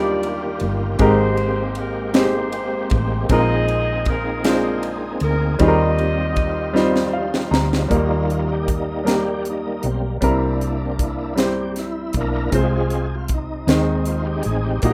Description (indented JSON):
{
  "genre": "slow gospel",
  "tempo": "52 BPM (dotted quarters)",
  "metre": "6/8",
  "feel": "straight",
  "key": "Eb major",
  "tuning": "A4 = 440 Hz",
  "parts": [
    { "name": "mellow horn section", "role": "melody", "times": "0.0-7.1 s", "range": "Eb4 to Eb5", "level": "-28 LUFS", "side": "equal", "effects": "none" },
    { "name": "clear upright piano", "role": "accompaniment", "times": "0.0-14.9 s", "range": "Ab2 to Bb5", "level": "-24 LUFS", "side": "equal", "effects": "none" },
    { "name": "overdriven tonewheel organ", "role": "sustained chords", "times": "0.0-14.9 s", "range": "Eb3 to Bb4", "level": "-28 LUFS", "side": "equal", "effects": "slow rotary speaker, chorus vibrato" },
    { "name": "hollow-body short-scale fingered electric bass", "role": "bass", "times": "0.0-14.9 s", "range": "G1 to Eb2", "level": "-26 LUFS", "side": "equal", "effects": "none" },
    { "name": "crisp fusion drum kit", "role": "drums", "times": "0.2-14.9 s", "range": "hi-hat, kick drum, ride cymbal, snare drum", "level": "-24 LUFS", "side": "equal", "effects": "none" }
  ],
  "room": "moderate small room reverb, RT60 0.6 s",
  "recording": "rough home demo mix",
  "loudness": "-20 LUFS",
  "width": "mono",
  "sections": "0.0-7.9 A section; 7.9-14.9 B section",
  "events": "drum fill 6.8-7.9; upright piano fill 6.8-7.9; tonewheel organ solo 7.9-14.9",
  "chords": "0.0 Ebmaj9; 1.0 Abmaj9; 3.3 Bb9sus4; 5.6 Eb69; 7.9 Eb; 10.2 C7; 12.5 Fm/C; 13.7 Ab/Eb",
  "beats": "| 1.00 2.15 | 3.30 4.45 | 5.60 6.76 | 7.91 9.06 | 10.22 11.37 | 12.53 13.68 | 14.84"
}